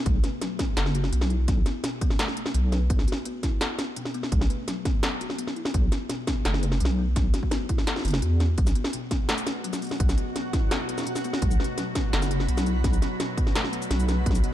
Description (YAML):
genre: half-time drum and bass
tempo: 169 BPM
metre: 4/4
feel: half-time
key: unclear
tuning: A4 = 440 Hz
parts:
  - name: buzzing kalimba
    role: arpeggios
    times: 0.0-14.5 s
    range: B2 to B4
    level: -34 LUFS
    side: left 4 dB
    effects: vintage 12-bit sampler grit, ping-pong delay
  - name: deep soft wobble bass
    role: bass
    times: 0.1-14.4 s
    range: F#1 to E2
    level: -24 LUFS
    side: equal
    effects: chorus
  - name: electronic kick drum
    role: drums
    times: 0.1-14.3 s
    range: none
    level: -25 LUFS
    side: equal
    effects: none
  - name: industrial drum kit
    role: drums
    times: 0.1-14.5 s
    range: hi-hat, shaker, snare drum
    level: -29 LUFS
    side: equal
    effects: none
  - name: bowed-like drone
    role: sustained chords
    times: 9.6-14.5 s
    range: B2 to F#4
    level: -34 LUFS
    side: equal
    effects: built-in reverb, sidechain pumping
  - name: backwards swelling texture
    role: texture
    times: 9.5-14.5 s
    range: F#4 to B5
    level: -38 LUFS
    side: right 2 dB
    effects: built-in reverb
room: little or no reverb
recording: dark, warm production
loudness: -23 LUFS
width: side -13 dB against mid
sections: 0.0-14.5 A section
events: none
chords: 0.0 B5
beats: | 0.06 0.42 0.77 1.13 | 1.48 1.84 2.19 2.55 | 2.90 3.26 3.61 3.97 | 4.32 4.68 5.03 5.39 | 5.74 6.10 6.45 6.81 | 7.16 7.52 7.87 8.23 | 8.58 8.94 9.29 9.65 | 10.00 10.36 10.71 11.07 | 11.42 11.78 12.13 12.49 | 12.84 13.20 13.55 13.91 | 14.26